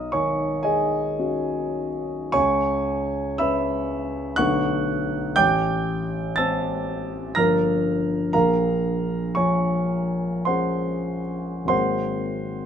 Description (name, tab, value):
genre	classical, impressionist solo piano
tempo	46-62 BPM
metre	3/4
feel	rubato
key	unclear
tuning	A4 = 440 Hz
part	warm grand piano	solo	0.0-12.7 s	G1 to Bb6	-21 LUFS	equal	none
room	light reverb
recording	minimal, uncompressed stereo recording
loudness	-21 LUFS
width	side -8 dB against mid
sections	0.0-12.7 A section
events	none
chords	0.0 B69; 2.4 C#m7; 4.4 Bm7; 5.4 Am7; 7.4 Gm7; 8.3 Bbm7; 11.7 Ab9